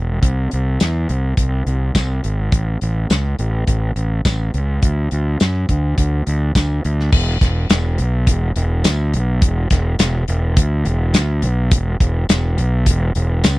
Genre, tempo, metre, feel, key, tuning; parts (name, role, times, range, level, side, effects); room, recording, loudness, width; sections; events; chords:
indie rock; 104 BPM; 4/4; straight; A4 = 440 Hz
fuzz fingered electric bass; bass; 0.0-13.6 s; E1 to F#2; -17 LUFS; equal; overdrive
loose indie drum kit; drums; 0.2-13.6 s; crash cymbal, hi-hat, kick drum, snare drum, tambourine; -16 LUFS; equal
little or no reverb; dry, close 1970s-style studio recording; -15 LUFS; side -19 dB against mid
0.0-7.1 A section; 7.1-13.6 B section